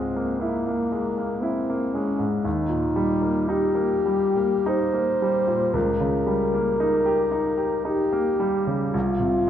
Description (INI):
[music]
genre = classical, romantic duo for French horn and grand piano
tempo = 49-59 BPM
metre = 3/4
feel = rubato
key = unclear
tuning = A4 = 440 Hz
[part]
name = warm French horn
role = melody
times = 0.0-9.5 s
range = Bb3 to C5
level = -23 LUFS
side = left 2 dB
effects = none
[part]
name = clear concert grand piano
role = accompaniment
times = 0.0-9.5 s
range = C2 to G4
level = -24 LUFS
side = right 1 dB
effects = none
[sound]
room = wet scoring stage reverb, RT60 1.6 s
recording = dark, warm production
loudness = -21 LUFS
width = side -10 dB against mid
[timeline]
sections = 0.0-9.5 A section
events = none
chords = 0.0 Bbm7b5/Db; 2.5 Eb; 5.8 Eb7/Db; 8.9 N.C.